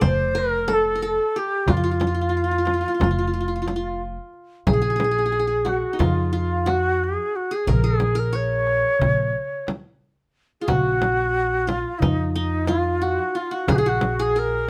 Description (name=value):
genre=Turkish makam ensemble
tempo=180 BPM (eighths)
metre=9/8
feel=straight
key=F makam rast, Bb makam nihavent from 4.7 s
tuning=A4 = 441 Hz
part: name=qanun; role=second line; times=0.0-14.7 s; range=Eb4 to D5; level=-30 LUFS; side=equal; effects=none
part: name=upright bass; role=bass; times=0.0-14.7 s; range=F1 to F2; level=-27 LUFS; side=equal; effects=none
part: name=darbuka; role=percussion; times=0.0-14.4 s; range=none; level=-30 LUFS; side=equal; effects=none
part: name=frame drum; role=percussion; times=0.0-14.2 s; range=none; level=-27 LUFS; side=equal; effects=none
part: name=breathy bright ney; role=melody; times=0.1-14.7 s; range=Eb4 to Db5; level=-25 LUFS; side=equal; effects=none
room=light reverb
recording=none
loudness=-22 LUFS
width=mono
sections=0.0-4.7 A section; 4.7-14.7 B section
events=none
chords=none